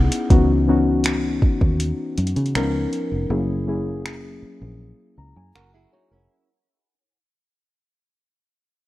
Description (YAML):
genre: contemporary R&B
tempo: 80 BPM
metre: 4/4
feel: straight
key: C# minor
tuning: A4 = 439 Hz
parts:
  - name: muted felt-like synth keys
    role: accompaniment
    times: 0.0-6.5 s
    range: E3 to A#5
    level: -22 LUFS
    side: left 2 dB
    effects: chorus
  - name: flamenco guitar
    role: arpeggios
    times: 0.0-0.1, 5.6-6.5 s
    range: C#4 to A#4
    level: -51 LUFS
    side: right 4 dB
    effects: none
  - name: fingered electric bass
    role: bass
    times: 0.0-6.3 s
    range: E#1 to C#3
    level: -23 LUFS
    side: equal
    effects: none
  - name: smooth R&B drum kit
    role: drums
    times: 0.1-5.7 s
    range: finger snaps, hi-hat, kick drum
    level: -19 LUFS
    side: equal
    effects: none
room: little or no reverb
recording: worn, warbling old tape, cassette tape, warbly pitch drift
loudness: -18 LUFS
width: side -16 dB against mid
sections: 0.3-6.3 A section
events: fade-out 0.3-6.3; break 3.3-6.3; synth keys fill 4.8-6.3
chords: 0.3 C#m11; 2.6 C#13; 3.3 F#9